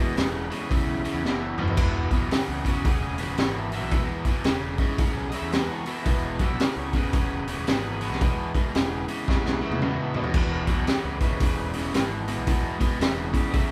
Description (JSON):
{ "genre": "blues rock power trio and southern rock", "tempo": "112 BPM", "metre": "4/4", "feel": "swing 62% on 8ths", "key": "E major", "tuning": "A4 = 440 Hz", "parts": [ { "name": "overdriven tonewheel organ", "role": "sustained chords", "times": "0.0-13.7 s", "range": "E3 to F#5", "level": "-37 LUFS", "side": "equal", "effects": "slow rotary speaker" }, { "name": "overdriven electric guitar", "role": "riff", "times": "0.0-13.7 s", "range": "E2 to C#3", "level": "-32 LUFS", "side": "equal", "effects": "spring reverb" }, { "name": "fuzz picked electric bass", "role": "bass", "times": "0.2-13.7 s", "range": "E1 to E2", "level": "-36 LUFS", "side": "equal", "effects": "overdrive" }, { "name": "raw garage drum kit", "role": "drums", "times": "0.2-13.7 s", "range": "crash cymbal, hi-hat, kick drum, snare drum, splash cymbal, toms", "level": "-27 LUFS", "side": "equal", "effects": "none" } ], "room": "light reverb", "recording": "band playing live in one room", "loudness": "-26 LUFS", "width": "mono", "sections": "0.0-13.7 A section", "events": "drum fill 1.3-1.8, 9.3-10.4", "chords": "0.0 E", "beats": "0.18 0.72 1.26 | 1.79 2.33 2.86 3.40 | 3.93 4.47 5.00 5.54 | 6.08 6.61 7.15 7.68 | 8.22 8.75 9.29 9.82 | 10.35 10.89 11.42 11.95 | 12.48 13.02 13.55" }